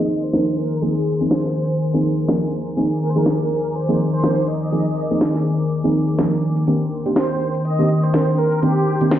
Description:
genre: deep house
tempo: 123 BPM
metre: 4/4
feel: swing 58% on 16ths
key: unclear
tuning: A4 = 440 Hz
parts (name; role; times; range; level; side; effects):
- mellow horn-like synth lead; melody; 0.0-9.2 s; G4 to Eb5; -24 LUFS; right 1 dB; ensemble chorus, tape echo
- dark analog pad; sustained chords; 0.0-9.2 s; Bb4 to D6; -31 LUFS; left 1 dB; chorus
- deep mellow chord stab; stabs; 0.0-9.2 s; Eb3 to Bb4; -20 LUFS; right 1 dB; chorus, tape echo
- deep dark ambient pad; texture; 0.0-9.2 s; Eb3 to Bb5; -22 LUFS; left 1 dB; chorus, built-in reverb
- house drum kit; drums; 0.1-9.2 s; hi-hat, snare drum; -22 LUFS; equal; vintage 12-bit sampler grit
room: wet digital room reverb, RT60 1.2 s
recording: played on a big sound system in a bare room, stone room reverb, low-pass filter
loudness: -17 LUFS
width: side -11 dB against mid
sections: 0.0-9.2 A section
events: filter sweep 0.0-9.2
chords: 0.0 Bb9sus4; 6.7 Cm7

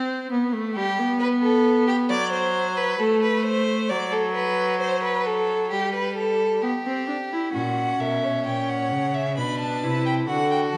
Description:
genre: classical, baroque-style fugue for string quartet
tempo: 66 BPM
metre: 4/4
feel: straight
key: unclear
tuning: A4 = 440 Hz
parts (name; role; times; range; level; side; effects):
- clear viola; accompaniment; 0.0-10.8 s; F#3 to F#4; -27 LUFS; equal; none
- rich violin; second line; 0.7-10.8 s; F#4 to D5; -27 LUFS; equal; none
- rich violin; melody; 7.5-10.8 s; E5 to B5; -29 LUFS; equal; none
- clear cello; bass; 7.5-10.8 s; A#2 to D3; -30 LUFS; equal; none
room: wet recital hall reverb, RT60 1.4 s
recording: none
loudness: -23 LUFS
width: mono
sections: 0.0-7.5 A section; 7.5-10.8 B section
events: none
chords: 0.3 G; 2.1 D7/F# (rootless); 5.7 N.C.; 7.5 F#7/A#; 9.4 Bm

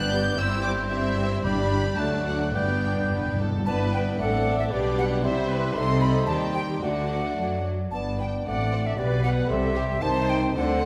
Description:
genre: quick classical-period movement for symphony orchestra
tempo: 105-117 BPM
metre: 2/4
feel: rubato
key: G major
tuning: A4 = 440 Hz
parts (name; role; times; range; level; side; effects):
- rich chamber violin section; melody; 0.0-10.9 s; D5 to G6; -38 LUFS; equal; none
- clear studio violin section; second line; 0.0-10.9 s; C4 to G5; -38 LUFS; equal; none
- hollow concert flute; second line; 0.0-10.9 s; D5 to G6; -34 LUFS; equal; none
- mellow cor anglais; second line; 0.0-10.9 s; B4 to D5; -36 LUFS; equal; none
- clear symphonic viola section; accompaniment; 0.0-10.9 s; G3 to D5; -34 LUFS; equal; none
- warm bassoon; accompaniment; 0.0-10.9 s; D3 to B3; -36 LUFS; equal; none
- rich studio cello section; bass; 0.0-10.9 s; D2 to F#3; -32 LUFS; equal; none
- warm symphonic double bass section; bass; 0.0-10.9 s; G1 to F#2; -32 LUFS; equal; none
- warm French horn section; sustained chords; 0.1-10.9 s; F#3 to G4; -35 LUFS; equal; none
- timpani; percussion; 1.4-3.6 s; G2; -34 LUFS; equal; none
room: wet scoring stage reverb, RT60 1.6 s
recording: none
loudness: -25 LUFS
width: mono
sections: 0.0-3.7 A section; 3.7-10.9 B section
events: timpani fill 2.5-3.7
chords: 0.4 C/G; 1.4 G; 2.0 D; 2.5 G; 4.2 D7/A; 4.7 G/B; 5.3 C; 5.8 Cm; 6.8 D; 7.9 G; 8.5 D7/A; 9.0 G/B; 9.5 C; 10.0 Cm

